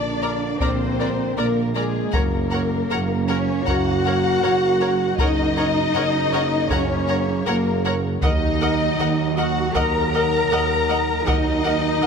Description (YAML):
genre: cinematic, epic orchestral film score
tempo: 79 BPM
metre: 4/4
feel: straight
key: unclear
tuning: A4 = 440 Hz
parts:
  - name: dark symphonic violin section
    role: melody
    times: 0.0-12.1 s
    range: Ab4 to Bb5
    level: -26 LUFS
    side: left 5 dB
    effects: none
  - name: bright trombone section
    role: sustained chords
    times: 0.0-12.1 s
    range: Db3 to Bb3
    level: -30 LUFS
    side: right 5 dB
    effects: none
  - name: warm French horn section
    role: sustained chords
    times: 0.0-12.1 s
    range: Ab3 to Bb4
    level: -24 LUFS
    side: left 3 dB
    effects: none
  - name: dark symphonic cello section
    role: bass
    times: 0.0-12.1 s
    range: Ab3 to Bb4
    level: -27 LUFS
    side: right 3 dB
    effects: none
  - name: mellow tuba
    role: bass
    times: 0.0-12.1 s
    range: Gb1 to Eb2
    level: -27 LUFS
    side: right 4 dB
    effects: none
  - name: warm symphonic double bass section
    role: bass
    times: 0.0-12.0 s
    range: Bb1 to Gb2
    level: -28 LUFS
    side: right 3 dB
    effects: none
  - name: clear symphonic violin section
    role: second line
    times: 0.2-12.1 s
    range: D5 to Bb5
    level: -30 LUFS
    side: left 4 dB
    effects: none
  - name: warm symphonic viola section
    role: accompaniment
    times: 0.2-12.1 s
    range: Bb4 to Eb5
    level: -30 LUFS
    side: right 1 dB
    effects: none
  - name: solo taiko drums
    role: drums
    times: 0.6-12.0 s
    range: none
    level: -25 LUFS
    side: equal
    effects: none
room: moderate concert hall reverb, RT60 2.1 s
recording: none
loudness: -18 LUFS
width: side -6 dB against mid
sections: 0.0-12.1 A section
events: none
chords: 0.0 Bb; 2.1 Gb; 8.2 Ebm